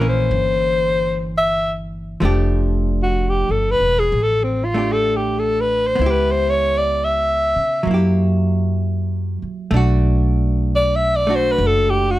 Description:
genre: jazz ballad.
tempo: 64 BPM.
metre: 4/4.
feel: swing 68% on 8ths.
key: unclear.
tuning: A4 = 439 Hz.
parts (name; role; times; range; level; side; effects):
breathy alto saxophone; melody; 0.0-12.2 s; C4 to E5; -17 LUFS; left 1 dB; none.
hollow-body jazz guitar; accompaniment; 0.0-12.2 s; E3 to G4; -24 LUFS; right 1 dB; none.
upright bass; bass; 0.0-12.2 s; E1 to C#3; -20 LUFS; equal; none.
room: little or no reverb.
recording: none.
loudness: -16 LUFS.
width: side -16 dB against mid.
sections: 0.0-12.2 A section.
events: alto saxophone solo 0.0-12.2.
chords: 0.0 C7b9; 2.2 F69; 6.0 C#m7b5; 7.9 F#7b9; 9.7 Bm7.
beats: 0.32 1.27 | 2.23 3.18 4.12 5.06 | 6.00 6.93 7.86 8.79 | 9.72 10.66 11.59.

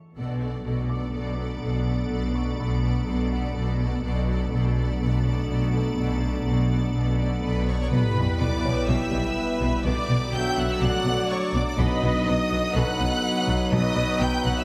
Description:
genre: cinematic, hybrid orchestral and electronic film score.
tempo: 124 BPM.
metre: 4/4.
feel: straight.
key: B minor.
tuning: A4 = 440 Hz.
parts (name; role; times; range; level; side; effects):
dark concert grand piano; texture; 0.0-14.6 s; D#4 to D6; -42 LUFS; equal; none.
rich studio violin section; melody; 0.2-14.6 s; F#5 to G6; -37 LUFS; equal; none.
clear studio violin section; second line; 0.2-14.6 s; B4 to G5; -37 LUFS; equal; none.
rich symphonic viola section; accompaniment; 0.2-14.6 s; G4 to E5; -37 LUFS; equal; none.
dark French horn section; sustained chords; 0.2-14.6 s; A3 to F#4; -34 LUFS; equal; none.
icy glass pad; sustained chords; 0.7-14.6 s; F#3 to F#5; -34 LUFS; equal; chorus, built-in reverb.
rich symphonic cello section; bass; 0.2-14.5 s; B2; -30 LUFS; equal; none.
rich symphonic double bass section; bass; 0.2-14.5 s; B1; -30 LUFS; equal; none.
clear trombone section; sustained chords; 7.9-14.6 s; B2 to G3; -35 LUFS; equal; none.
sub drop; sound effects; 7.9-9.9 s; none; -30 LUFS; equal; none.
room: wet recital hall reverb, RT60 1.6 s.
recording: none.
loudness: -24 LUFS.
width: mono.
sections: 0.2-7.9 A section; 7.9-14.6 B section.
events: break 0.0; impact 7.9-9.9.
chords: 0.2 Bm7; 7.9 Em/B; 9.9 D/B; 11.8 B.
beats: | 0.18 0.66 1.14 1.63 | 2.11 2.60 3.08 3.56 | 4.05 4.53 5.01 5.50 | 5.98 6.47 6.95 7.43 | 7.92 8.40 8.89 9.37 | 9.85 10.34 10.82 11.31 | 11.79 12.27 12.76 13.24 | 13.72 14.21.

